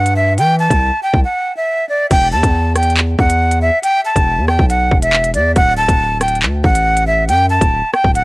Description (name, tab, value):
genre	hip hop, drill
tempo	139 BPM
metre	4/4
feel	half-time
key	E minor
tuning	A4 = 440 Hz
part	breathy bright jazz flute	melody	0.0-8.2 s	D5 to A5	-14 LUFS	equal	cassette tape, analog delay
part	distorted 808-style bass	bass	0.0-8.2 s	D1 to E3	-16 LUFS	equal	distortion
part	drill drum kit	drums	0.1-8.2 s	crash cymbal, handclaps, hi-hat, kick drum, rim click	-15 LUFS	equal	none
room	little or no reverb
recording	home recording on cassette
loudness	-11 LUFS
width	side -21 dB against mid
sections	0.0-2.1 A section; 2.1-8.2 B section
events	break 1.2-2.1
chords	0.0 C; 2.1 E5; 5.6 D